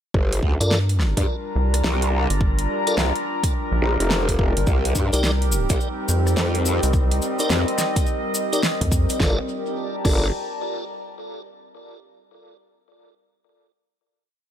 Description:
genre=glitch hop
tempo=106 BPM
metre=4/4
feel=swing 63% on 16ths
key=G minor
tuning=A4 = 439 Hz
part: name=warbly tape-like pad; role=sustained chords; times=0.9-9.5 s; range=G3 to Bb4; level=-30 LUFS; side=left 2 dB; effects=chorus, built-in reverb, sidechain pumping
part: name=growl bass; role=bass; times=0.1-10.3 s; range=F1 to G2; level=-21 LUFS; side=equal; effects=chorus
part: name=electronic kick drum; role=drums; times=0.1-10.2 s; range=none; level=-22 LUFS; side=equal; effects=studio reverb
part: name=warbly tape-like pad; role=texture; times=1.1-11.4 s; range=C4 to Bb5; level=-28 LUFS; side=equal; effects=chorus, built-in reverb, sidechain pumping
part: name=pop drum kit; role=drums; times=0.3-10.2 s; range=crash cymbal, hi-hat, rim click, snare drum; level=-26 LUFS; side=right 1 dB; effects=studio reverb
part: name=tonewheel organ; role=stabs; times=0.6-10.3 s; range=Eb4 to D5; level=-28 LUFS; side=left 1 dB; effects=overdrive, chorus vibrato, sidechain pumping, tape echo
part: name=rubbery square bass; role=bass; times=0.6-9.1 s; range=G1 to G2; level=-20 LUFS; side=equal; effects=tube saturation
part: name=cabasa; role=percussion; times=4.7-9.2 s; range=none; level=-30 LUFS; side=left 3 dB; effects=tape echo
room=digital ambience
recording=echo-heavy mix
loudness=-19 LUFS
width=side -10 dB against mid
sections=0.1-9.2 drop; 9.2-11.5 final chord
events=drop 0.1-9.2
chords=0.1 Gm7; 4.7 Cm7; 9.2 Gm7

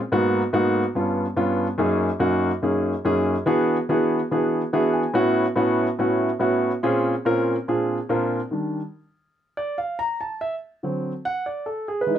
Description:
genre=jazz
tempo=143 BPM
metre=4/4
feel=straight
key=unclear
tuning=A4 = 438 Hz
part: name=warm grand piano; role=solo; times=0.1-12.2 s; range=Gb2 to Bb5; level=-20 LUFS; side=equal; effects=none
room=moderate studio reverb, RT60 0.6 s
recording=none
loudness=-20 LUFS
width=side -10 dB against mid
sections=0.0-8.5 A section; 8.5-12.2 B section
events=grand piano fill 4.5-5.2; grand piano solo 8.5-12.2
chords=0.1 Abm9; 1.0 G7#11; 1.8 Gb69; 3.5 E7; 5.2 A69; 6.8 Bbm9; 7.7 Bb9; 8.5 Ebmaj7; 10.2 D7

